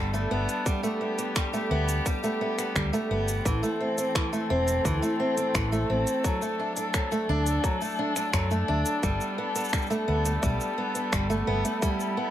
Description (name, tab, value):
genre	folktronica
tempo	86 BPM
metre	4/4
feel	straight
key	G major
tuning	A4 = 440 Hz
part	dark string quartet	sustained chords	0.0-12.3 s	E3 to A4	-31 LUFS	left 1 dB	none
part	picked steel-string acoustic guitar	arpeggios	0.0-12.3 s	E3 to D4	-28 LUFS	right 1 dB	ping-pong delay
part	hollow-body short-scale fingered electric bass	bass	0.0-11.6 s	E1 to F#2	-28 LUFS	equal	none
part	organic electronic drum kit	drums	0.1-12.1 s	finger snaps, hi-hat, shaker	-33 LUFS	equal	overdrive
part	electronic kick drum	drums	0.7-12.0 s	none	-30 LUFS	equal	overdrive
room	light reverb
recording	none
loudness	-24 LUFS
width	side -11 dB against mid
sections	0.0-12.3 A section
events	none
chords	0.0 Gadd9; 3.5 Am; 6.2 D; 9.0 Gadd9